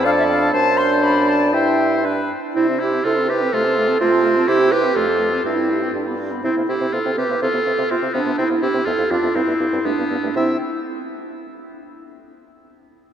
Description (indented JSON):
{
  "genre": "quick classical-period movement for wind quintet",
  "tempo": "122 BPM",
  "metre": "2/4",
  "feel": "rubato",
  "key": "C major",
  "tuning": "A4 = 438 Hz",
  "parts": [
    { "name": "silver concert flute", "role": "melody", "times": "0.0-10.6 s", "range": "C5 to C6", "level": "-26 LUFS", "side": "left 4 dB", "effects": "none" },
    { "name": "clear oboe", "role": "second line", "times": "0.0-10.6 s", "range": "B3 to E5", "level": "-24 LUFS", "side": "left 3 dB", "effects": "none" },
    { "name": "warm French horn", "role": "accompaniment", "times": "0.0-10.6 s", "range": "A3 to E4", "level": "-25 LUFS", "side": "left 1 dB", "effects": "none" },
    { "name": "mellow bassoon", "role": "bass", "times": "0.0-10.6 s", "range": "F2 to C3", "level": "-24 LUFS", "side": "right 2 dB", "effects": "none" },
    { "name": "mellow clarinet", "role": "accompaniment", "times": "0.1-10.6 s", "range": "D4 to E5", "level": "-20 LUFS", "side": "right 3 dB", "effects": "none" }
  ],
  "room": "wet cathedral reverb, RT60 5.3 s",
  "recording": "in a vast, echoing space",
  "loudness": "-16 LUFS",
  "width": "side -9 dB against mid",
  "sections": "0.0-2.6 A section; 2.6-10.4 B section",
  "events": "none",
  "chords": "0.1 Dm/F; 0.5 D7/F#; 1.5 C/G; 2.0 G; 2.6 C; 3.5 F/C; 4.5 C; 5.0 F; 5.4 C/G; 5.9 G; 6.4 C5; 7.4 F/C; 8.4 C; 8.9 F; 9.4 G7sus4; 9.9 G7; 10.4 C5"
}